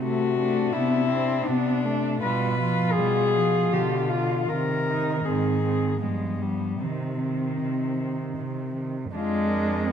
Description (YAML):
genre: classical, lyrical piece for cello ensemble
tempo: 74-85 BPM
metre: 3/4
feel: rubato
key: unclear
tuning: A4 = 440 Hz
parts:
  - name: muted cello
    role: melody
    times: 0.0-9.9 s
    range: B3 to B4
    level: -27 LUFS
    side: left 6 dB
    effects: none
  - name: muted cello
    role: accompaniment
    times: 0.0-9.9 s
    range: D3 to C4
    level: -28 LUFS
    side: left 2 dB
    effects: none
  - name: muted cello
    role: bass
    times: 0.0-9.9 s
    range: F2 to C3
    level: -29 LUFS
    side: right 3 dB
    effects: none
  - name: muted cello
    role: second line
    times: 0.4-9.9 s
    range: Eb3 to F4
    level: -32 LUFS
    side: right 7 dB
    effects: none
room: moderate scoring stage reverb, RT60 1.6 s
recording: dark, warm production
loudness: -22 LUFS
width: side -8 dB against mid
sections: 0.0-9.2 A section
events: none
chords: 0.0 D7/C; 2.2 Bdim7; 4.5 Cm; 5.3 Ab; 6.0 G7b9; 6.8 Cm; 9.2 Ddim/F